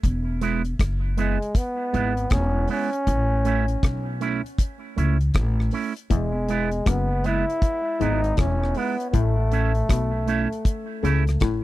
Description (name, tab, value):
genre	roots reggae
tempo	79 BPM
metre	4/4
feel	swing 64% on 16ths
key	E major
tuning	A4 = 442 Hz
part	upright bass	bass	0.0-11.6 s	E1 to C#2	-23 LUFS	equal	tube saturation
part	damped 70s drum kit	drums	0.0-11.6 s	hi-hat, kick drum, rim click	-22 LUFS	equal	none
part	electric guitar with an envelope filter	accompaniment	0.4-11.2 s	G#3 to E4	-29 LUFS	right 8 dB	tape echo
part	breathy trombone	melody	1.2-11.4 s	G#3 to E4	-27 LUFS	equal	tape echo
part	muted clav	riff	6.1-11.6 s	E2 to C#3	-27 LUFS	left 7 dB	overdrive, auto-wah
room	little or no reverb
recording	dry, close 1970s-style studio recording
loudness	-21 LUFS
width	side -16 dB against mid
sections	0.0-11.6 A section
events	none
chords	0.0 E; 3.1 A; 6.1 E; 9.1 A